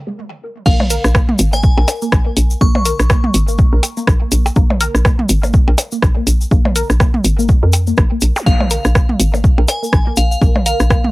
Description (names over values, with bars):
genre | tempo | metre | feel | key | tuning
minimal techno | 123 BPM | 4/4 | swing 58% on 16ths | Bb minor | A4 = 440 Hz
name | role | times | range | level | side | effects
resonant blip pluck | riff | 0.1-10.9 s | Ab3 to Bb4 | -24 LUFS | left 1 dB | phaser, analog chorus, sidechain pumping, analog delay
glassy synth bell | melody | 0.7-3.3, 8.5-11.1 s | F5 to Db6 | -23 LUFS | left 2 dB | chorus, tape echo
hollow knocking FM bass | bass | 0.7-11.1 s | Ab1 to F2 | -15 LUFS | equal | sidechain pumping
electronic kick drum | drums | 0.7-11.0 s | none | -13 LUFS | equal | none
punchy analog drum machine | drums | 0.7-11.0 s | crash cymbal, hi-hat, rim click | -18 LUFS | equal | low-pass filter on hats, low-pass filter on cymbals, low-pass filter on snare
egg shaker | percussion | 0.7-11.0 s | none | -26 LUFS | left 2 dB | none
electronic toms and percussion blips | percussion | 0.8-11.1 s | none | -21 LUFS | right 1 dB | tape echo
zap | sound effects | 8.4-8.5 s | none | -25 LUFS | equal | none
room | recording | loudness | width
little or no reverb | dry, gritty hardware recording | -11 LUFS | side -21 dB against mid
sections
0.7-11.1 A section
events
stop 0.2-0.7; drop 0.7-11.1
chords
0.0 N.C.; 0.7 Bb5